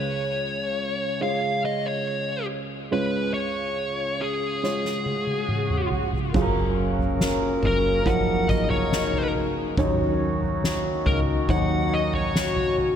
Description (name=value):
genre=pop ballad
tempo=70 BPM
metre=4/4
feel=straight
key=F# major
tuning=A4 = 438 Hz
part: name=fuzz lead guitar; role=melody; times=0.0-12.7 s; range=G#4 to F#5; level=-28 LUFS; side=left 1 dB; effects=distortion, ping-pong delay
part: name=dark upright piano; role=accompaniment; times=0.0-13.0 s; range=C#2 to C#5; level=-27 LUFS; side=right 3 dB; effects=lush chorus
part: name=swell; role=sound effects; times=4.8-6.3 s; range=none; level=-36 LUFS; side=right 3 dB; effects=none
part: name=soft-mallet drum kit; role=drums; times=4.6-13.0 s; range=crash cymbal, kick drum, snare drum, toms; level=-27 LUFS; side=equal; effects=none
part: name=mellow French horn section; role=second line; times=6.3-13.0 s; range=C#4 to F#4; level=-30 LUFS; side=left 6 dB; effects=none
part: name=warm woodwind section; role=sustained chords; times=6.3-13.0 s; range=D#3 to A#4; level=-29 LUFS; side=left 1 dB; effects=none
part: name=woody fretless electric bass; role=bass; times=6.3-13.0 s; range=F#1 to D#2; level=-28 LUFS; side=left 1 dB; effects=lush chorus
room=moderate plate reverb, RT60 3.2 s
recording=dreamy mix soaked in reverb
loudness=-22 LUFS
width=side -8 dB against mid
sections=0.0-6.3 A section; 6.3-13.0 B section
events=drum fill 4.6-6.3; swell 4.8-6.3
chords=0.0 C#; 6.3 F#maj7; 9.8 D#m7